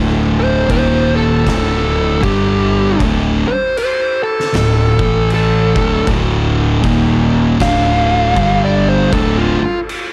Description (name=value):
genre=stoner and doom metal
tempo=78 BPM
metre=4/4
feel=swing 59% on 8ths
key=D minor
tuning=A4 = 440 Hz
part: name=thick fuzz guitar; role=riff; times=0.0-9.6 s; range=D2 to A3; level=-20 LUFS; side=equal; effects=distortion
part: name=thick fuzz guitar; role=riff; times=0.0-9.6 s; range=D2 to A3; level=-21 LUFS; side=equal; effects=distortion
part: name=fuzz fingered electric bass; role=bass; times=0.0-9.6 s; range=D1 to A1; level=-20 LUFS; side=equal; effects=overdrive
part: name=fuzz lead guitar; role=melody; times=0.4-9.8 s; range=F4 to F5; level=-19 LUFS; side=equal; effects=distortion, analog delay
part: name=oversized low-tuned drum kit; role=drums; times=0.7-10.1 s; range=crash cymbal, kick drum, snare drum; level=-23 LUFS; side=equal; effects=none
room=small room ambience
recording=dark, warm production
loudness=-14 LUFS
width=mono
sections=0.0-10.1 A section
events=lead electric guitar solo 0.0-10.1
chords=0.0 D5; 0.7 Eb5; 1.5 D5; 2.2 G5; 3.0 D5; 4.9 A5; 5.7 D5; 6.8 Eb5; 7.6 Dm; 8.4 G5; 9.1 D5